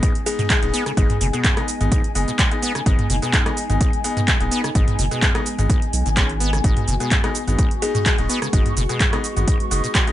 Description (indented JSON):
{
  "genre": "acid house",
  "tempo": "127 BPM",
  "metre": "4/4",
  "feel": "swing 53% on 16ths",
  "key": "G# minor",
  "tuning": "A4 = 440 Hz",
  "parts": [
    { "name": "warm analog pad", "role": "sustained chords", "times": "0.0-10.1 s", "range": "G#3 to F#4", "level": "-32 LUFS", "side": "right 1 dB", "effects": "chorus, sidechain pumping" },
    { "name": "acid bass, saw", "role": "riff", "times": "0.0-10.1 s", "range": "G#1 to B3", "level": "-28 LUFS", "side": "equal", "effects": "tube saturation, lush chorus, sidechain pumping, dub echo" },
    { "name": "bright concert grand piano", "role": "stabs", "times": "0.0-10.1 s", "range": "G#3 to G#4", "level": "-28 LUFS", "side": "left 4 dB", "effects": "dub echo" },
    { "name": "booming analog drum machine", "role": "drums", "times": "0.0-10.1 s", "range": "handclaps, hi-hat, rim click, shaker, toms", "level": "-22 LUFS", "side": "right 1 dB", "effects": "overdrive" },
    { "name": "electronic kick drum", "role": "drums", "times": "0.0-10.0 s", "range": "none", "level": "-19 LUFS", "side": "equal", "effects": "none" },
    { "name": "ethereal airy pad", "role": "texture", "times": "0.2-10.1 s", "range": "G#5 to C#6", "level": "-31 LUFS", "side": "left 3 dB", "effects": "ensemble chorus, built-in reverb, sidechain pumping" },
    { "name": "buzzing kalimba", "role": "melody", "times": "0.3-0.7, 7.8-8.3 s", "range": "G#4", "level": "-30 LUFS", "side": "left 5 dB", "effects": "dub echo" },
    { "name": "saturated sub bass", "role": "bass", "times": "0.6-9.8 s", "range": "D#1 to B1", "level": "-22 LUFS", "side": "equal", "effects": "sidechain pumping" }
  ],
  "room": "light reverb",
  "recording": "nothing above 10.9 kHz",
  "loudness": "-17 LUFS",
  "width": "side -13 dB against mid",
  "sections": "0.0-10.1 A section",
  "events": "none",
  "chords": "0.0 G#m"
}